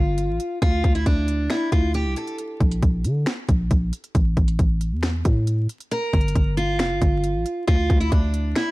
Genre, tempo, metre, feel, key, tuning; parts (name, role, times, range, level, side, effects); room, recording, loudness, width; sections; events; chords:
hip hop, trap; 136 BPM; 4/4; half-time; A4 = 440 Hz
picked steel-string acoustic guitar; melody; 0.0-2.4, 5.9-8.7 s; D4 to Bb4; -25 LUFS; equal; low-pass filter, tape echo
growling 808-style bass; bass; 0.0-8.5 s; F1 to D3; -22 LUFS; equal
trap drum kit; drums; 0.2-8.7 s; finger snaps, hi-hat, kick drum, snare drum; -21 LUFS; equal
digital ambience; dark, warm production, vinyl crackle; -19 LUFS; side -20 dB against mid
0.0-8.7 A section
0.0 G7(no3); 0.6 N.C.; 4.1 A5; 5.9 Gm7; 7.7 Cadd9 (rootless)